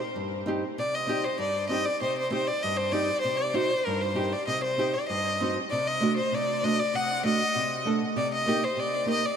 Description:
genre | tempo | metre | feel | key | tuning
klezmer | 98 BPM | 2/4 | straight | C dorian sharp4 | A4 = 440 Hz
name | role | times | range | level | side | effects
clear violin | melody | 0.0-9.4 s | Bb4 to F#5 | -27 LUFS | left 1 dB | ping-pong delay
nylon-string guitar | accompaniment | 0.2-9.2 s | G2 to A4 | -29 LUFS | right 1 dB | none
room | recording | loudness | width
wet huge ambient reverb, RT60 3.9 s | dreamy mix soaked in reverb | -25 LUFS | side -7 dB against mid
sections
0.8-9.4 A section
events
none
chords
0.0 Cm; 5.7 D/C; 8.2 Eb/C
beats
0.15 | 0.77 1.39 | 2.01 2.63 | 3.25 3.87 | 4.48 5.10 | 5.71 6.33 | 6.94 7.55 | 8.16 8.77

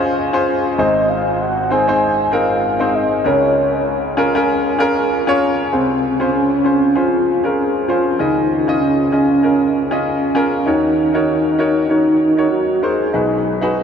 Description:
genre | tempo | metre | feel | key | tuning
pop | 97 BPM | 4/4 | swing 56% on 16ths | Db major | A4 = 443 Hz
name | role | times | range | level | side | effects
clear grand piano | accompaniment | 0.0-13.8 s | Ab1 to Eb5 | -16 LUFS | left 1 dB | none
soft octave-layered synth lead | melody | 0.8-13.8 s | C4 to Ab5 | -17 LUFS | right 1 dB | chorus, tremolo, diffuse ambient delay
room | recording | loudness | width
wet huge ambient reverb, RT60 8.1 s | dreamy mix soaked in reverb | -14 LUFS | side -7 dB against mid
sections
0.0-5.7 A section; 5.7-13.8 B section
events
none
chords
0.0 Dbmaj7; 0.8 Ab; 3.3 Db6; 5.7 Dbmaj7; 10.7 Ebm7; 13.1 Cb6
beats
0.16 | 0.78 1.40 2.02 2.63 | 3.25 3.87 4.49 5.11 | 5.72 6.34 6.96 7.58 | 8.20 8.81 9.43 10.05 | 10.66 11.28 11.90 12.52 | 13.13 13.75

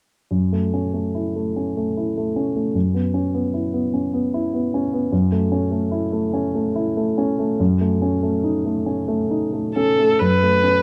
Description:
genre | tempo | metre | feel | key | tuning
classical, impressionist duo for viola and grand piano | 64-78 BPM | 3/4 | rubato | F# minor | A4 = 440 Hz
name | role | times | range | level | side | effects
dark grand piano | accompaniment | 0.3-10.8 s | F#2 to E4 | -21 LUFS | equal | none
rich viola | melody | 9.8-10.8 s | A4 to B4 | -18 LUFS | equal | none
room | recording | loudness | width
light reverb | close, detailed microphones | -21 LUFS | mono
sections
0.3-10.2 A section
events
none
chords
0.3 F#m7; 2.8 F#7sus4; 5.1 F#m7; 7.6 F#m6; 10.2 F#m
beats
| 0.31 1.15 1.97 | 2.75 3.54 4.33 | 5.12 5.92 6.75 | 7.59 8.43 9.30 | 10.20

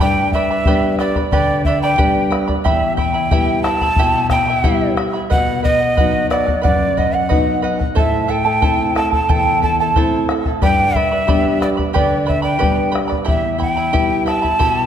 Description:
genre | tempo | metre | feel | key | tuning
andean folk, Andean ensemble | 90 BPM | 4/4 | straight | unclear | A4 = 437 Hz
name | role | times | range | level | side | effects
breathy hollow quena | melody | 0.0-14.9 s | D5 to A5 | -18 LUFS | equal | none
charango | accompaniment | 0.0-14.9 s | E4 to B5 | -20 LUFS | right 6 dB | none
nylon-string guitar | accompaniment | 0.0-14.9 s | E2 to E4 | -20 LUFS | left 3 dB | none
bombo | percussion | 0.3-14.8 s | none | -20 LUFS | left 1 dB | none
room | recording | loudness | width
wet scoring stage reverb, RT60 1.6 s | none | -14 LUFS | side -9 dB against mid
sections
0.0-14.9 A section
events
none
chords
0.0 G; 2.7 Em; 5.3 B; 8.0 Am; 10.6 G; 13.3 Em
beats
0.66 1.32 1.99 | 2.65 3.32 3.98 4.64 | 5.31 5.97 6.64 7.30 | 7.96 8.63 9.29 9.95 | 10.62 11.28 11.94 12.61 | 13.27 13.94 14.60

